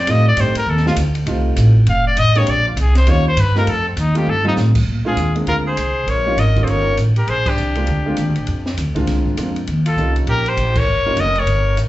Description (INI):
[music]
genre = jazz, small-group swing and bop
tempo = 200 BPM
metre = 4/4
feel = swing 62% on 8ths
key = Bb major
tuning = A4 = 442 Hz
[part]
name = clear trumpet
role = melody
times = 0.0-11.8 s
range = C4 to F5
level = -19 LUFS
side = left 2 dB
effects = slapback echo
[part]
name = upright bass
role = bass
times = 0.0-11.9 s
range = F1 to Bb2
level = -16 LUFS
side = equal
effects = none
[part]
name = warm concert grand piano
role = accompaniment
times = 0.1-11.2 s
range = G3 to Ab4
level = -23 LUFS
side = right 2 dB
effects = slapback echo
[part]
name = open jazz drum kit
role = drums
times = 0.1-11.9 s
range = crash cymbal, hi-hat, kick drum, ride cymbal, snare drum, toms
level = -26 LUFS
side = equal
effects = none
[part]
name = breathy alto saxophone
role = second line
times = 5.1-11.8 s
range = D4 to Bb4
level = -26 LUFS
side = right 2 dB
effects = slapback echo
[sound]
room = light reverb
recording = live gig heard through the venue's PA, club reverb, nothing above 7.9 kHz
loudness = -14 LUFS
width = side -16 dB against mid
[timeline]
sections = 0.0-4.9 A section; 4.9-11.9 B section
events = trumpet solo 0.0-4.9; drum fill 4.3; band accent 7.4, 10.7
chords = 0.0 F9; 2.5 Bbsus2; 3.1 Eb9; 3.7 F9; 4.9 Bb9; 6.1 Eb9; 7.3 Bb9; 9.7 Eb9